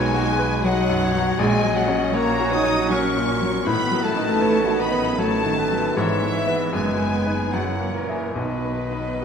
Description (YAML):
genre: classical, romantic movement for piano and orchestra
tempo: 78 BPM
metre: 3/4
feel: uneven beats, rubato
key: B major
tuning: A4 = 441 Hz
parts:
  - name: clear baby grand piano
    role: melody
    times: 0.0-9.2 s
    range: A#1 to C#5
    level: -24 LUFS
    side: left 3 dB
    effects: none
  - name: clear symphonic violin section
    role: melody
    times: 0.0-9.2 s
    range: A#4 to D#6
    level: -31 LUFS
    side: left 4 dB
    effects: none
  - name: bright clarinet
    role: second line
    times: 0.0-9.2 s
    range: A#4 to D#5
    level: -30 LUFS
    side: left 2 dB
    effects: none
  - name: rich symphonic violin section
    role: second line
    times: 0.0-9.2 s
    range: A#4 to D#6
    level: -32 LUFS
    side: left 3 dB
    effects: none
  - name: silver concert flute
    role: second line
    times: 0.0-9.2 s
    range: A#4 to D#6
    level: -30 LUFS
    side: equal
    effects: none
  - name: rich studio viola section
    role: accompaniment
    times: 0.0-9.2 s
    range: C#3 to F#4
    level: -31 LUFS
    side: right 4 dB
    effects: none
  - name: mellow French horn section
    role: sustained chords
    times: 0.0-9.2 s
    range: A#2 to D#4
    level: -28 LUFS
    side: left 2 dB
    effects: none
  - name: rich symphonic cello section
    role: bass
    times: 0.0-9.2 s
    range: A#2 to D#4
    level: -27 LUFS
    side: right 3 dB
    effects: none
  - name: rich symphonic double bass section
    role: bass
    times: 0.0-9.2 s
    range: F#1 to B1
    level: -30 LUFS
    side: right 6 dB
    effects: none
  - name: mellow trombone section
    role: sustained chords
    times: 1.4-9.2 s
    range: D#3 to C#4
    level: -31 LUFS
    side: right 3 dB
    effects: none
room: wet concert hall reverb, RT60 2.1 s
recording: none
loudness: -19 LUFS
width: side -7 dB against mid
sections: 0.0-9.2 A section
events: none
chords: 0.0 B; 1.4 F#/A#; 3.7 B7/A; 6.0 E/G#; 6.7 B/F#; 7.5 F#9; 8.4 B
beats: 0.66 | 1.40 2.15 2.91 | 3.66 4.42 5.19 | 5.97 6.74 7.53 | 8.35 9.21